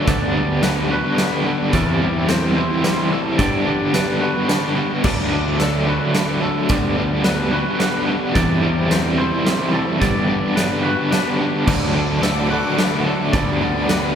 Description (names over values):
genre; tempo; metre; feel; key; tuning
post-rock; 109 BPM; 3/4; straight; G major; A4 = 440 Hz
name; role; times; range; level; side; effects
twangy electric guitar; arpeggios; 0.0-14.2 s; E2 to C5; -28 LUFS; left 4 dB; none
twangy electric guitar; arpeggios; 0.0-14.2 s; A4 to D5; -27 LUFS; right 2 dB; none
crunchy overdriven guitar; riff; 0.0-14.2 s; G2 to E4; -19 LUFS; equal; tremolo
growling picked electric bass; bass; 0.1-14.2 s; D2 to G2; -25 LUFS; equal; overdrive
big rock drum kit; drums; 0.1-14.0 s; crash cymbal, hi-hat, kick drum, snare drum; -23 LUFS; right 1 dB; none
warm studio string section; sustained chords; 11.7-14.2 s; A4 to D6; -28 LUFS; left 1 dB; none
room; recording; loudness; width
wet church reverb, RT60 3.0 s; recorded in a church or concert hall; -16 LUFS; side -8 dB against mid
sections
0.0-14.2 A section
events
none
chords
0.1 Gmaj7/D; 1.7 C6/E; 3.4 Gmaj7; 5.0 D; 6.7 Gmaj7/D; 8.4 C6/E; 10.0 Gmaj7; 11.7 D; 13.3 Gmaj7/D